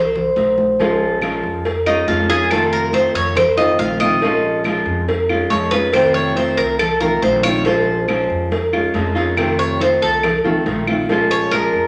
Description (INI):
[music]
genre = latin, Cuban son and guajira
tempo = 140 BPM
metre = 4/4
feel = straight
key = Bb minor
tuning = A4 = 440 Hz
[part]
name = Cuban tres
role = arpeggios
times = 0.0-11.9 s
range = Eb4 to F5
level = -19 LUFS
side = equal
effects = none
[part]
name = upright bass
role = bass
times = 0.0-11.9 s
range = Bb1 to F2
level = -29 LUFS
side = equal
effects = none
[part]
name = congas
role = percussion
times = 0.2-11.9 s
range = none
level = -30 LUFS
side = equal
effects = none
[part]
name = cowbell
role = percussion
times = 0.4-11.7 s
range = none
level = -25 LUFS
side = equal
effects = none
[part]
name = nylon-string guitar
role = accompaniment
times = 0.8-11.9 s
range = C3 to F4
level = -22 LUFS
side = equal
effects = none
[part]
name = claves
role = percussion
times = 1.2-11.7 s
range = none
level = -28 LUFS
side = equal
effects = none
[sound]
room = wet large studio reverb, RT60 0.9 s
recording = none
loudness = -17 LUFS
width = mono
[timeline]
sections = 0.0-11.9 A section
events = Cuban tres solo 0.0-11.9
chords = 0.0 N.C.; 0.8 Bbm7; 2.5 F7; 4.2 Bbm7; 5.9 F7; 7.7 Bbm7; 9.4 F7; 11.1 Bbm7